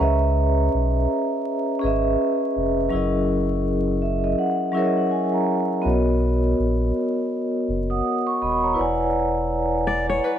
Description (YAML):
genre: hip hop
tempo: 82 BPM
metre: 4/4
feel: swing 59% on 16ths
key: C# minor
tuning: A4 = 439 Hz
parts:
  - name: vibraphone with soft mallets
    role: accompaniment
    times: 0.0-10.4 s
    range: F#3 to D#6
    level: -21 LUFS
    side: equal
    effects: low-pass filter
  - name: sub bass with octave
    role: bass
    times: 0.0-10.2 s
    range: D#1 to C#2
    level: -24 LUFS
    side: equal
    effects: none
  - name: nylon-string guitar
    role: second line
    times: 9.9-10.4 s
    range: B4 to D5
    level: -23 LUFS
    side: left 3 dB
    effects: low-pass filter
room: light reverb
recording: vinyl crackle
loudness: -20 LUFS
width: side -9 dB against mid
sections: 0.0-10.4 A section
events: vibraphone fill 3.7-5.9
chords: 0.0 C#m9; 2.9 F#13; 5.9 Bmaj9; 8.8 E13